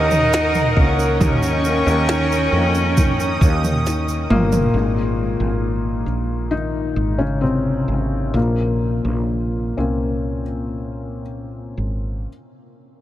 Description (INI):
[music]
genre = pop ballad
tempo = 57-68 BPM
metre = 4/4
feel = straight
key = Bb minor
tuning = A4 = 440 Hz
[part]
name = rich cello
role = melody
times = 0.0-4.3 s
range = Db4 to Eb4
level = -22 LUFS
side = equal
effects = none
[part]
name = rich symphonic violin section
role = second line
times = 0.0-4.3 s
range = Bb4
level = -29 LUFS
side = equal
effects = none
[part]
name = felt-muted upright piano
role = accompaniment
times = 0.0-12.3 s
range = Bb2 to Eb4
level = -22 LUFS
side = left 3 dB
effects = none
[part]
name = chorused pulse-width pad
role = sustained chords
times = 0.0-4.7 s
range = Bb4 to Eb6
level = -27 LUFS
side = right 1 dB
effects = none
[part]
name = woody fretless electric bass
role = bass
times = 0.0-12.3 s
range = G1 to F2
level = -22 LUFS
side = equal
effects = none
[part]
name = minimal click drum kit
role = drums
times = 0.1-4.7 s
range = kick drum, snare drum, toms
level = -21 LUFS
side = right 1 dB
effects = none
[part]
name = egg shaker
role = percussion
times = 0.1-4.7 s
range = none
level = -36 LUFS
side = right 8 dB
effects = none
[sound]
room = moderate huge ambient reverb, RT60 8.0 s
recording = dreamy mix soaked in reverb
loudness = -17 LUFS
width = side -13 dB against mid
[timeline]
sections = 0.0-4.7 A section; 4.7-12.3 B section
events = drum fill 3.9-4.7; slowing down 4.7-12.3; felt piano solo 4.7-12.3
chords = 0.0 Ebm; 1.2 Eb7; 4.7 Absus2; 8.3 Bbmadd9